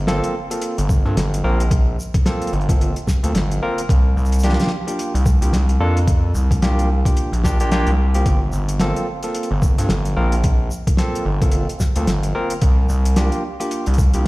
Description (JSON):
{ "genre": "glitch hop", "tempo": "110 BPM", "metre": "4/4", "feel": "swing 59% on 16ths", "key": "G minor", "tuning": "A4 = 439 Hz", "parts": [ { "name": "gritty driven synth bass", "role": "bass", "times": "0.0-14.3 s", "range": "G1 to G2", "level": "-18 LUFS", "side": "equal", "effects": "overdrive" }, { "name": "barky tine electric piano", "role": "stabs", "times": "0.1-14.3 s", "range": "Bb3 to Bb4", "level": "-24 LUFS", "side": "equal", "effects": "sidechain pumping, tape echo" }, { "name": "cloth-damped thuddy drum kit", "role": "drums", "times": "0.1-14.2 s", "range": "hi-hat, rim click, shaker, snare drum", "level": "-25 LUFS", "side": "equal", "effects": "none" }, { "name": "electronic kick drum", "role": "drums", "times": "0.9-14.1 s", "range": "none", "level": "-17 LUFS", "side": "equal", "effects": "overdrive" } ], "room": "light reverb, small room ambience", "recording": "played on a big sound system in a bare room, stone room reverb", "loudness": "-16 LUFS", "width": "side -20 dB against mid", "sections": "0.0-14.3 A section", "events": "none", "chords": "0.0 Gm11; 3.9 C9sus4; 8.3 Gm11; 12.6 C9sus4", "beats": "0.07 0.62 1.17 | 1.71 2.26 2.80 3.35 | 3.89 4.44 4.98 5.53 | 6.08 6.62 7.17 7.71 | 8.26 8.80 9.35 9.89 | 10.44 10.98 11.53 12.07 | 12.62 13.17 13.71 14.26" }